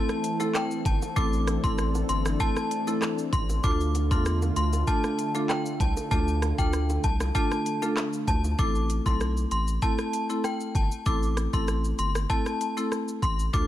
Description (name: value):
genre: dancehall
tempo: 97 BPM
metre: 4/4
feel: straight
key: A minor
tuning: A4 = 439 Hz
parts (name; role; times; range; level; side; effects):
- synth chime; melody; 0.0-13.7 s; G5 to D6; -31 LUFS; left 2 dB; ensemble chorus, tremolo, ping-pong delay
- marimba with medium hard mallets; accompaniment; 0.0-13.7 s; A3 to A4; -30 LUFS; equal; none
- warm analog pad; sustained chords; 0.0-8.5 s; D3 to A4; -34 LUFS; equal; chorus, sidechain pumping
- pop drum kit; drums; 0.1-13.7 s; handclaps, hi-hat, kick drum, rim click, shaker; -28 LUFS; equal; vintage 12-bit sampler grit
- bongos; percussion; 0.1-8.6 s; none; -42 LUFS; right 4 dB; none
- saturated sub bass; bass; 0.9-13.7 s; G1 to E2; -27 LUFS; equal; none
room: little or no reverb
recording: none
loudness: -24 LUFS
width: side -13 dB against mid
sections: 0.0-8.6 A section; 8.6-13.7 B section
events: none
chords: 0.0 Am; 3.6 Dm; 8.6 Am